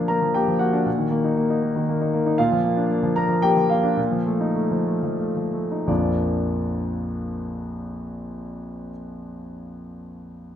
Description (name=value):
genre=classical, virtuoso piano study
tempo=84-121 BPM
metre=3/4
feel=rubato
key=Bb major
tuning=A4 = 438 Hz
part: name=warm concert grand piano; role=solo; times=0.0-10.6 s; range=Bb1 to Bb5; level=-21 LUFS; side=left 1 dB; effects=none
room=wet recital hall reverb, RT60 1.5 s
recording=none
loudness=-20 LUFS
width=side -9 dB against mid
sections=0.0-5.9 A section; 5.9-10.0 B section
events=slowing down 1.6-5.9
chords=0.0 Bb; 0.9 Ebm/Bb; 2.4 Bb; 4.0 F7/Bb; 5.9 Bb